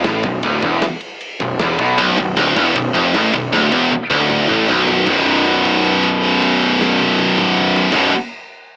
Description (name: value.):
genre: heavy metal.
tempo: 155 BPM.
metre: 4/4.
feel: straight.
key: B minor.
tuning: A4 = 440 Hz.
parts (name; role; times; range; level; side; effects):
high-gain distorted guitar; riff; 0.0-8.1 s; B1 to B2; -26 LUFS; equal; none.
high-gain distorted guitar; riff; 0.0-8.1 s; B1 to B2; -22 LUFS; equal; distortion.
fuzz picked electric bass; bass; 0.0-8.1 s; B0 to B1; -23 LUFS; equal; overdrive.
tight metal drum kit; drums; 0.0-8.0 s; crash cymbal, kick drum, ride cymbal, snare drum, toms; -28 LUFS; equal; none.
heavy high-gain guitar; riff; 2.0-8.1 s; B1 to B2; -17 LUFS; equal; distortion.
room: small room ambience.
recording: home recording on cassette, small speaker sound.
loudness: -15 LUFS.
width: mono.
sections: 0.0-5.1 A section; 5.1-8.2 B section.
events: drum fill 3.5-5.1; held note 5.1-7.9.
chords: 0.0 Bm; 5.1 B5.